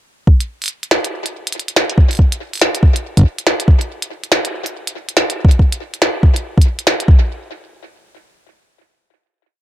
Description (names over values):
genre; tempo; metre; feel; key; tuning
IDM; 141 BPM; 4/4; swing 62% on 16ths; none; none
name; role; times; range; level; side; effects
electronic kick drum; drums; 0.3-7.2 s; none; -9 LUFS; equal; none
glitchy drum kit; drums; 0.4-7.1 s; hi-hat, snare drum; -17 LUFS; equal; overdrive, tape echo
room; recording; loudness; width
light reverb; none; -13 LUFS; side -13 dB against mid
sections
0.3-7.1 groove; 7.1-9.6 final hit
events
none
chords
none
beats
| 0.27 0.70 1.12 1.55 | 1.98 2.40 2.83 3.25 | 3.68 4.10 4.53 4.96 | 5.38 5.81 6.23 6.66 | 7.08